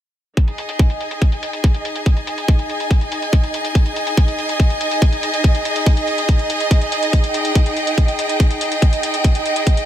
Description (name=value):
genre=psychedelic trance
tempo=142 BPM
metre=4/4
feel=straight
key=unclear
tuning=A4 = 439 Hz
part: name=electronic hi-hat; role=drums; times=0.4-9.9 s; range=none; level=-28 LUFS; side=left 1 dB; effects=low-pass filter on hats, low-pass filter on room
part: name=electronic kick drum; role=drums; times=0.4-9.8 s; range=none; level=-13 LUFS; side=equal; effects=none
part: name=rich studio string section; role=texture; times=0.4-9.9 s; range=D#4 to G#5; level=-20 LUFS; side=equal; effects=sidechain pumping
room=light reverb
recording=none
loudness=-15 LUFS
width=side -11 dB against mid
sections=0.4-9.9 A section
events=none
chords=0.4 G#5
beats=| 0.37 0.79 1.22 1.64 | 2.06 2.48 2.91 3.33 | 3.75 4.17 4.60 5.02 | 5.44 5.86 6.29 6.71 | 7.13 7.55 7.98 8.40 | 8.82 9.24 9.67